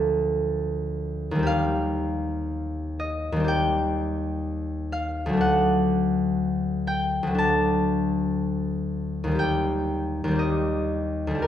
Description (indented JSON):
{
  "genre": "classical, solo harp piece",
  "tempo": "54-62 BPM",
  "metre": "4/4",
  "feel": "rubato",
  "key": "unclear",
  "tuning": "A4 = 440 Hz",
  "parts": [
    { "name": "concert harp", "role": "solo", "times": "0.0-11.5 s", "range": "D2 to A5", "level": "-23 LUFS", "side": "left 1 dB", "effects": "none" }
  ],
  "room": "wet recital hall reverb, RT60 1.5 s",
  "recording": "recorded in a church or concert hall",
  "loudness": "-23 LUFS",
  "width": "side -10 dB against mid",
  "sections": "0.0-11.5 A section",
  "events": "none",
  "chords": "0.0 Dm; 1.5 Cm/Eb"
}